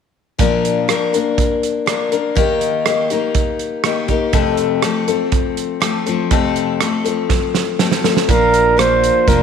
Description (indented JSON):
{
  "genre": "honky-tonk and classic country",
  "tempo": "122 BPM",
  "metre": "4/4",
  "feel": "straight",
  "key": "Bb major",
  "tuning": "A4 = 442 Hz",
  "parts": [
    { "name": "picked steel-string acoustic guitar", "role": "accompaniment", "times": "0.4-9.4 s", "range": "F2 to Bb4", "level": "-17 LUFS", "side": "left 7 dB", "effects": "none" },
    { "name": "natural country drum kit", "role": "drums", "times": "0.4-9.4 s", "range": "hi-hat, kick drum, rim click, snare drum", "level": "-19 LUFS", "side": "right 4 dB", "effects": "none" },
    { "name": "mellow flugelhorn", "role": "melody", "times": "8.3-9.4 s", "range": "Bb4 to C5", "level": "-12 LUFS", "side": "right 4 dB", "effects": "none" },
    { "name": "upright bass", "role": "bass", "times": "8.3-9.4 s", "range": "F1 to Bb1", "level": "-21 LUFS", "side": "right 2 dB", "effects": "none" }
  ],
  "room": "moderate echo chamber reverb, RT60 2.2 s",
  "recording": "1960s-style stereo",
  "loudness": "-14 LUFS",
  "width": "side -7 dB against mid",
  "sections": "0.4-8.3 A section; 8.3-9.4 B section",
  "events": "drum fill 7.3-8.3",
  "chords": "0.4 Bb; 2.4 Eb; 4.3 F; 8.3 Bb",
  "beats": "| 0.39 0.88 1.38 1.87 | 2.36 2.86 3.35 3.84 | 4.34 4.83 5.32 5.82 | 6.31 6.80 7.30 7.79 | 8.29 8.78 9.27"
}